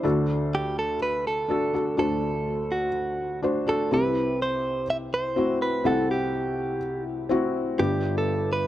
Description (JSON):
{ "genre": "pop", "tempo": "124 BPM", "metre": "4/4", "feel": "swing 56% on 16ths", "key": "unclear", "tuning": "A4 = 440 Hz", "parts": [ { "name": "felt-muted upright piano", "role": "accompaniment", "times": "0.0-8.7 s", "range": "G1 to F#5", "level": "-25 LUFS", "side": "left 1 dB", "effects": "none" }, { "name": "direct-recorded clean electric guitar", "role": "melody", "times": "0.5-8.7 s", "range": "F#4 to E5", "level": "-27 LUFS", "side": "right 2 dB", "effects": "none" } ], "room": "small room reverb", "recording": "dry, close 1970s-style studio recording", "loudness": "-23 LUFS", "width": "side -13 dB against mid", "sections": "0.0-3.9 A section; 3.9-8.7 B section", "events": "none", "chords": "0.0 D; 3.9 C; 7.8 G" }